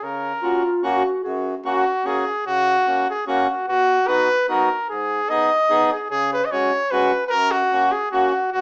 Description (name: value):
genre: alpine folk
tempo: 148 BPM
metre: 3/4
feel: swing 55% on 8ths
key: F# major, B major from 3.7 s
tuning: A4 = 443 Hz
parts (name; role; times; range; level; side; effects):
- clear trumpet; melody; 0.0-8.6 s; F#4 to D#5; -21 LUFS; equal; none
- accordion; accompaniment; 0.0-8.6 s; F#2 to G#4; -26 LUFS; equal; none
- mellow clarinet; second line; 0.4-1.5 s; E#4 to G#4; -25 LUFS; equal; none
room: wet studio reverb, RT60 0.5 s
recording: heard from further back in the room, small speaker sound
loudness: -20 LUFS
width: mono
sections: 0.0-3.7 A section; 3.7-8.6 B section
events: none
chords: 0.0 F#; 3.7 B; 4.9 G#m; 6.1 C#sus4; 7.3 F#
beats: | 0.02 0.42 0.83 | 1.23 1.64 2.04 | 2.45 2.86 3.27 | 3.67 4.08 4.49 | 4.90 5.30 5.70 | 6.11 6.51 6.91 | 7.31 7.71 8.12 | 8.53